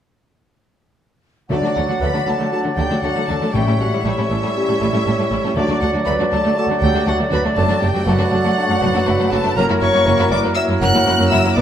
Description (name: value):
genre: quick classical-period movement for symphony orchestra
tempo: 119 BPM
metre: 4/4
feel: straight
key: D major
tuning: A4 = 441 Hz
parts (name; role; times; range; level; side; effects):
- clear chamber violin section; melody; 1.5-11.6 s; D5 to F#6; -24 LUFS; left 1 dB; none
- mellow clarinet; second line; 1.5-11.6 s; D4 to F#5; -25 LUFS; left 1 dB; none
- mellow flute section; second line; 1.5-11.6 s; A4 to F#5; -26 LUFS; left 1 dB; none
- rich chamber violin section; second line; 1.5-11.6 s; G3 to F#4; -26 LUFS; left 4 dB; none
- warm oboe; second line; 1.5-11.6 s; A#4 to D5; -25 LUFS; right 2 dB; none
- mellow bassoon; accompaniment; 1.5-11.6 s; F#3 to G3; -24 LUFS; right 1 dB; none
- warm chamber viola section; accompaniment; 1.5-11.6 s; F#3 to B3; -24 LUFS; equal; none
- warm French horn section; sustained chords; 1.5-11.6 s; A3 to G4; -25 LUFS; left 3 dB; none
- clear chamber double bass section; bass; 1.5-11.6 s; F#1 to D2; -25 LUFS; right 2 dB; none
- warm chamber cello section; bass; 1.5-11.6 s; D2 to D3; -23 LUFS; right 2 dB; none
- timpani; percussion; 1.5-6.3 s; A2 to D3; -26 LUFS; left 1 dB; none
room: wet recital hall reverb, RT60 1.4 s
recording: none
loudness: -15 LUFS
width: side -9 dB against mid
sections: 1.5-11.6 A section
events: none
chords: 1.5 D; 3.5 A7; 5.6 D; 7.6 D/F#; 9.6 F#7